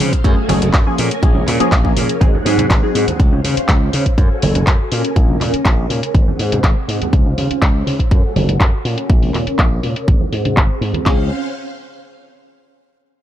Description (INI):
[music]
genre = filtered disco house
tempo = 122 BPM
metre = 4/4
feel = straight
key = Db major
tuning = A4 = 440 Hz
[part]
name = funky polysynth comp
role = accompaniment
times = 0.0-3.0, 11.1-11.3 s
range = F3 to Ab4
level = -18 LUFS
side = equal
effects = chorus, phaser, sidechain pumping, low-pass filter
[part]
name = string machine, full ensemble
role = sustained chords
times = 0.0-11.3 s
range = A3 to Ab5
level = -23 LUFS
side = equal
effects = phaser, ensemble chorus, sidechain pumping, low-pass filter
[part]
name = glassy slap bass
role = bass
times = 0.0-11.3 s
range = Gb1 to Db3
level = -19 LUFS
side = equal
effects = sidechain pumping, low-pass filter
[part]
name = house drum kit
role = drums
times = 0.0-11.0 s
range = handclaps, hi-hat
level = -21 LUFS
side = left 1 dB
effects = sidechain pumping on hats, low-pass filter on hats, low-pass filter on snare
[part]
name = congas and tambourine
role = percussion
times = 0.0-11.0 s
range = none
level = -24 LUFS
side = right 2 dB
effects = sidechain pumping on perc, low-pass filter on perc
[part]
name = house drum kit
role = drums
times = 0.1-11.2 s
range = handclaps, kick drum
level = -13 LUFS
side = equal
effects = none
[sound]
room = little or no reverb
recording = none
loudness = -13 LUFS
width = side -11 dB against mid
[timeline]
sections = 0.0-11.1 A section; 11.1-13.0 B section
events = filter sweep on slap bass 0.0-11.1; filter sweep 0.0-11.1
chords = 0.2 Gbmadd9; 1.0 Bbm7; 2.2 Ab7; 3.2 Dbmaj7; 4.2 Gbmadd9; 4.9 Bbm7; 6.1 Ab7; 7.1 Dbmaj7; 8.1 Gbmadd9; 8.9 Bbm7; 10.1 Ab7; 11.1 Dbmaj7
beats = 0.25 0.74 | 1.23 1.72 2.21 2.71 | 3.20 3.69 4.18 4.67 | 5.16 5.66 6.15 6.64 | 7.13 7.62 8.11 8.61 | 9.10 9.59 10.08 10.57 | 11.06